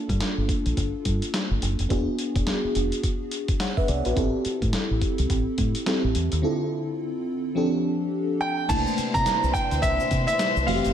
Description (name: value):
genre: R&B, new jack swing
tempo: 106 BPM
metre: 4/4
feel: swing 60% on 16ths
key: unclear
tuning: A4 = 436 Hz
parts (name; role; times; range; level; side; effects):
- FM electric piano with soft pad layer; accompaniment; 0.0-10.9 s; D3 to F#5; -26 LUFS; equal; chorus, slapback echo
- deep dub fingered electric bass; bass; 0.1-10.9 s; E1 to C3; -26 LUFS; equal; none
- dusty soul sampler-style drum kit; drums; 0.1-10.9 s; crash cymbal, hi-hat, kick drum, snare drum; -27 LUFS; equal; overdrive
- bright concert grand piano; melody; 8.4-10.9 s; E5 to Bb5; -24 LUFS; right 1 dB; slapback echo
- warm studio string section; sustained chords; 8.7-10.9 s; Bb2 to C5; -31 LUFS; left 3 dB; none
- tube shaker; percussion; 8.7-10.9 s; none; -42 LUFS; left 8 dB; none
room: wet recital hall reverb, RT60 1.6 s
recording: big arena sound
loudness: -22 LUFS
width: side -9 dB against mid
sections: 0.0-8.7 A section; 8.7-10.9 B section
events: none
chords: 0.0 Gm7; 1.9 E7; 4.2 Am7; 6.4 Dm7; 7.6 F6; 8.7 C13